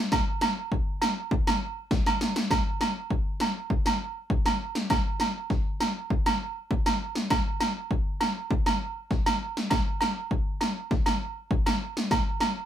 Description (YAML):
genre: highlife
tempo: 100 BPM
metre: 4/4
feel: straight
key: none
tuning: none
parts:
  - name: 80s electronic pad drums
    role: drums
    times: 0.1-12.6 s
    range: kick drum, snare drum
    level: -26 LUFS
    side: left 1 dB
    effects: overdrive
  - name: agogo bells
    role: percussion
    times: 0.1-12.6 s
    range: none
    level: -29 LUFS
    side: right 3 dB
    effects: none
room: moderate studio ambience, RT60 0.5 s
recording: band playing live in one room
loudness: -25 LUFS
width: side -10 dB against mid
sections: 0.0-2.5 A section; 2.5-12.7 B section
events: drum fill 1.9-2.5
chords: none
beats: | 0.11 0.71 1.31 1.91 | 2.50 3.10 3.70 4.30 | 4.90 5.50 6.10 6.70 | 7.30 7.91 8.51 9.11 | 9.71 10.31 10.91 11.51 | 12.11